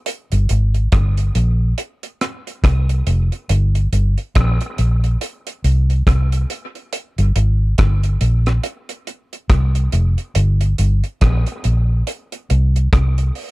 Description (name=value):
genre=dub reggae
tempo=70 BPM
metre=4/4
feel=swing 60% on 16ths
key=unclear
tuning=A4 = 439 Hz
part: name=deep reggae drum kit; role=drums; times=0.1-13.5 s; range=hi-hat, kick drum, rim click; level=-19 LUFS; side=equal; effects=none
part: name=vintage muted fingered electric bass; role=bass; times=0.3-13.3 s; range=F1 to C2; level=-15 LUFS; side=equal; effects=none
room=little or no reverb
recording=dark, warm production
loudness=-15 LUFS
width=side -20 dB against mid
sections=0.0-13.5 A section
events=none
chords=none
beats=| 0.06 0.92 1.78 2.64 | 3.49 4.35 5.21 6.07 | 6.92 7.78 8.64 9.50 | 10.35 11.21 12.07 12.93